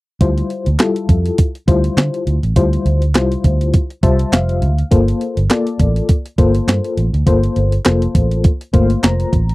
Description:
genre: early-eighties boogie funk.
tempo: 102 BPM.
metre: 4/4.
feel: swing 56% on 16ths.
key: D minor.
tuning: A4 = 440 Hz.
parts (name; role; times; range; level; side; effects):
FM electric piano with tremolo; accompaniment; 0.2-9.5 s; G3 to Bb5; -18 LUFS; left 3 dB; none.
vintage muted fingered electric bass; bass; 0.2-9.5 s; F1 to D3; -16 LUFS; right 1 dB; none.
clean 12-bit digital drum machine; drums; 0.2-9.5 s; handclaps, hi-hat, kick drum, snare drum; -14 LUFS; right 1 dB; none.
room: little or no reverb.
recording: dry, close 1970s-style studio recording.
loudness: -13 LUFS.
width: side -20 dB against mid.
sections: 0.2-9.5 A section.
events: FM electric piano fill 3.7-4.9, 8.4-9.5.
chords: 0.2 Dm11; 4.9 Gm11.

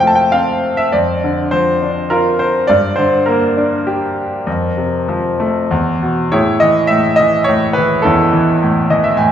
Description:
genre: classical, lyrical solo piano.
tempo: 93-110 BPM.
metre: 3/4.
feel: rubato.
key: F major.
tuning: A4 = 440 Hz.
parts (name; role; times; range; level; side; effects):
bright concert grand piano; solo; 0.0-9.3 s; E2 to A5; -12 LUFS; equal; none.
room: wet recital hall reverb, RT60 1.5 s.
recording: recorded in a church or concert hall.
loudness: -12 LUFS.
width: side -9 dB against mid.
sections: 0.0-6.3 A section; 6.3-9.3 B section.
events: grand piano fill 8.6-9.3.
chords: 0.0 F; 0.9 Bbadd9/F; 2.7 Gm; 4.5 F; 5.7 E5; 6.3 Amaj7.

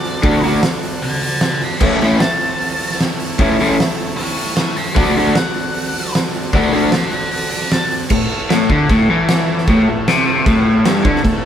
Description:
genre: garage rock duo or trio.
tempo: 153 BPM.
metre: 4/4.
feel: straight.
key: A major.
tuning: A4 = 442 Hz.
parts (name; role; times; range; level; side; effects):
octave-fuzz lead guitar; melody; 0.0-7.9 s; C#5 to D6; -22 LUFS; equal; distortion.
combo organ; sustained chords; 0.0-11.5 s; E4 to D5; -27 LUFS; right 2 dB; none.
oversized low-tuned drum kit; drums; 0.0-11.3 s; crash cymbal, hi-hat, kick drum, snare drum; -18 LUFS; equal; none.
crunchy overdriven guitar; riff; 0.2-11.4 s; G2 to F#4; -15 LUFS; left 1 dB; spring reverb.
room: moderate studio reverb, RT60 0.7 s.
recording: band playing live in one room.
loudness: -13 LUFS.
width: side -9 dB against mid.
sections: 0.0-8.1 A section; 8.1-11.5 B section.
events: lead electric guitar solo 0.0-8.1.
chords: 0.0 D; 1.8 A; 5.0 D; 8.1 A.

